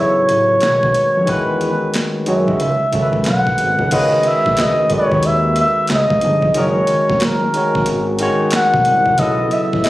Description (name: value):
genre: R&B, neo-soul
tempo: 91 BPM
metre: 4/4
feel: swing 64% on 16ths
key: C# minor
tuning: A4 = 440 Hz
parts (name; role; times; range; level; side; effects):
- breathy flugelhorn; melody; 0.0-9.9 s; A#4 to F#5; -16 LUFS; equal; slapback echo
- barky tine electric piano; accompaniment; 0.0-9.9 s; C#3 to C#5; -19 LUFS; left 1 dB; overdrive
- smooth synth bass; bass; 0.2-9.9 s; F#1 to F#2; -20 LUFS; equal; none
- boom bap sampler-style drum kit; drums; 0.3-9.9 s; crash cymbal, handclaps, hi-hat, kick drum, snare drum; -22 LUFS; equal; overdrive
room: light reverb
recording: recorded on a phone in the room, studio reverb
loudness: -13 LUFS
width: side -16 dB against mid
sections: 0.0-3.9 A section; 3.9-9.9 B section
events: none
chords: 0.0 B7sus4; 0.6 Badd9; 1.3 E6; 2.6 C#m11; 3.9 C#sus2; 5.9 C#9; 6.5 F#69; 9.2 B7sus4